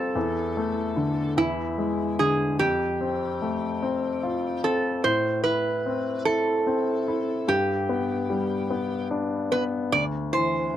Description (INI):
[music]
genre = pop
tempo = 49 BPM (dotted quarters)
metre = 6/8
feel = straight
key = A minor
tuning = A4 = 439 Hz
[part]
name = metal-body resonator slide guitar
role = melody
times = 0.0-10.8 s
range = E4 to D5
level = -26 LUFS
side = right 3 dB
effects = none
[part]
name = clear baby grand piano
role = accompaniment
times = 0.0-10.8 s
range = D2 to F4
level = -26 LUFS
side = left 3 dB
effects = none
[sound]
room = little or no reverb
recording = dry, close 1970s-style studio recording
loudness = -23 LUFS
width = side -11 dB against mid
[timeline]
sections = 0.0-10.8 A section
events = none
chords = 0.2 E7sus4; 1.4 E7; 2.6 Fadd9; 5.0 Am; 7.5 G; 9.9 Dsus2